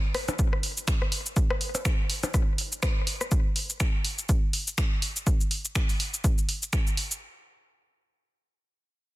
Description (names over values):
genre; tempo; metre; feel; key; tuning
techno; 123 BPM; 4/4; swing 57% on 16ths; none; none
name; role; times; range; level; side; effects
punchy analog drum machine; drums; 0.1-7.2 s; cabasa, finger snaps, hi-hat; -30 LUFS; equal; soft clipping on snare
electronic rim click and percussion blips; percussion; 0.1-3.3 s; none; -33 LUFS; left 2 dB; soft clipping on snare, ping-pong delay
electronic kick drum; drums; 0.4-6.8 s; none; -25 LUFS; equal; none
room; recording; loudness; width
little or no reverb; dense, heavily limited modern master; -24 LUFS; side -18 dB against mid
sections
0.0-7.2 A section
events
drop 0.0-7.2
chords
none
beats
0.39 0.88 | 1.36 1.85 2.34 2.83 | 3.32 3.80 4.29 4.78 | 5.27 5.75 6.24 6.73